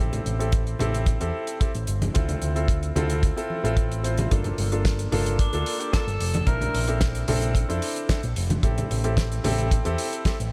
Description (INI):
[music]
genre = nu-disco, nu disco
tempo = 111 BPM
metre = 4/4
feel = straight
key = unclear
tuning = A4 = 441 Hz
[part]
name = warm baby grand piano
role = accompaniment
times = 0.0-10.4 s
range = Bb3 to C5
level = -31 LUFS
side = equal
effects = sidechain pumping, low-pass filter, delay
[part]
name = picked electric bass with an envelope filter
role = bass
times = 0.0-10.5 s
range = F1 to F2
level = -29 LUFS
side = equal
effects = sidechain pumping
[part]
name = damped 70s drum kit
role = drums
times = 0.1-10.5 s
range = hi-hat, snare drum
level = -35 LUFS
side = equal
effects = studio reverb
[part]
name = congas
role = percussion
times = 0.1-9.6 s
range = none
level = -33 LUFS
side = equal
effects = none
[part]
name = kick drum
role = drums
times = 0.5-10.4 s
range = none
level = -26 LUFS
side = equal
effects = studio reverb
[part]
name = warm tenor saxophone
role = melody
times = 5.4-7.0 s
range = D4 to Bb4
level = -34 LUFS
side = equal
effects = delay
[sound]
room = light reverb, small room ambience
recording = none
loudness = -24 LUFS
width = mono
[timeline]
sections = 0.0-10.5 A section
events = none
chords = 0.0 Am7; 2.1 Dm7; 4.3 Gm9; 6.5 Bbmaj9#11; 8.6 Am7